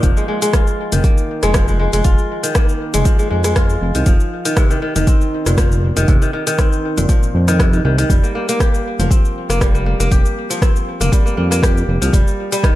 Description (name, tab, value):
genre	afro house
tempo	119 BPM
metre	4/4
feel	swing 55% on 16ths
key	F minor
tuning	A4 = 443 Hz
part	kora	arpeggios	0.0-12.8 s	Bb2 to G4	-19 LUFS	equal	sidechain pumping, ping-pong delay
part	smooth synth bass	bass	0.0-12.2 s	F1 to F2	-17 LUFS	equal	sidechain pumping
part	deep house drum kit	drums	0.0-12.7 s	cabasa, hi-hat, rim click, toms	-22 LUFS	left 1 dB	overdrive
part	electronic kick drum	drums	0.0-12.7 s	none	-14 LUFS	equal	overdrive
room	light reverb, digital ambience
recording	lossy compression artefacts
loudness	-13 LUFS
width	side -15 dB against mid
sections	0.0-12.8 A section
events	none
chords	0.0 Fm7; 4.1 Cm7/F; 8.1 Gm7/F; 12.1 Ebadd9/F